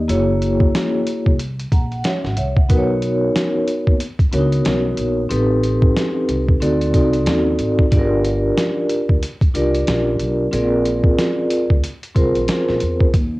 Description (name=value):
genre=hip hop, jazz-hop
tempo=92 BPM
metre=4/4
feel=swing 60% on 16ths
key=unclear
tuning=A4 = 443 Hz
part: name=upright bass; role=bass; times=0.0-13.4 s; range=Gb1 to Fb2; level=-22 LUFS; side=equal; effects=transformer saturation
part: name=vibraphone with soft mallets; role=accompaniment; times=0.1-13.1 s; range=Bb3 to Bb5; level=-18 LUFS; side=equal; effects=cassette tape
part: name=lo-fi sampler-style drum kit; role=drums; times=0.1-13.3 s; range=hi-hat, kick drum, snare drum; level=-18 LUFS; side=equal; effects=cassette tape
room=light reverb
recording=home recording on cassette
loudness=-15 LUFS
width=side -20 dB against mid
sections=0.0-13.1 A section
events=none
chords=0.1 Gb7; 2.7 Bmaj9; 5.3 Am7b5; 6.6 D7b9; 7.9 Gm7; 10.5 Bb9